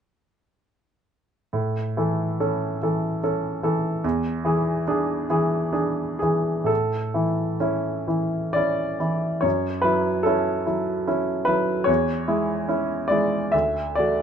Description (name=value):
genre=classical, romantic character piece for solo piano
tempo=59-75 BPM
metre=3/4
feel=rubato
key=A major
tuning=A4 = 440 Hz
part: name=clear baby grand piano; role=solo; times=1.5-14.2 s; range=D2 to E5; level=-21 LUFS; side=equal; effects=none
room=light reverb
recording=dark, warm production, nothing above 10.3 kHz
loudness=-21 LUFS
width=side -8 dB against mid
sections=1.5-6.7 A section; 6.7-14.2 B section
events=none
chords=1.5 A; 4.0 E7; 6.7 A; 9.4 F#m7; 11.9 C#m/E; 13.5 D